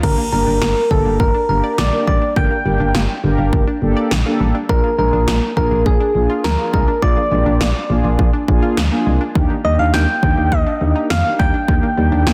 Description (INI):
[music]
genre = synth-pop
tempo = 103 BPM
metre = 4/4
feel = straight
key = G minor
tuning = A4 = 440 Hz
[part]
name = soft struck synth lead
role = melody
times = 0.0-12.3 s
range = Ab4 to G5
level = -21 LUFS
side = equal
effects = chorus, tape echo
[part]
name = mellow synth brass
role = accompaniment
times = 0.0-12.3 s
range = Bb3 to Bb4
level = -23 LUFS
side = equal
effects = chorus
[part]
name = analog pluck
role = arpeggios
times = 0.0-12.3 s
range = D3 to D5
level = -28 LUFS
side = equal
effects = chorus, tape echo
[part]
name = solid FM bass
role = bass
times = 0.0-12.3 s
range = G1 to F2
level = -20 LUFS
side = equal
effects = none
[part]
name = 80s electronic pad drums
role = drums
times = 0.0-12.3 s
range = crash cymbal, kick drum, snare drum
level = -21 LUFS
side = equal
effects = none
[sound]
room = moderate lush hall reverb, RT60 1.7 s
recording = dense, heavily limited modern master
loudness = -16 LUFS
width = mono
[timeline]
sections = 0.0-12.3 A section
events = none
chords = 0.0 Gm; 4.7 Bb7; 9.4 Ebmaj7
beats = | 0.03 0.62 1.20 1.78 | 2.36 2.95 3.53 4.11 | 4.69 5.28 5.86 6.44 | 7.02 7.61 8.19 8.77 | 9.35 9.94 10.52 11.10 | 11.68 12.27